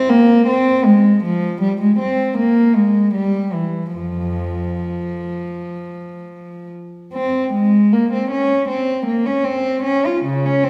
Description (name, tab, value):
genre	classical, baroque-style suite movement for unaccompanied cello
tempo	77 BPM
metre	4/4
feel	uneven beats, rubato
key	F minor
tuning	A4 = 441 Hz
part	warm cello	solo	0.0-10.7 s	F2 to F4	-17 LUFS	equal	none
room	wet recital hall reverb, RT60 1.5 s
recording	heard from further back in the room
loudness	-17 LUFS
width	mono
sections	0.0-7.1 A section; 7.1-10.7 A section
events	none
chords	none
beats	0.09 | 0.85 1.60 2.35 3.13 | 3.92 4.74 5.55 6.34 | 7.14 7.92 8.69 9.44 | 10.25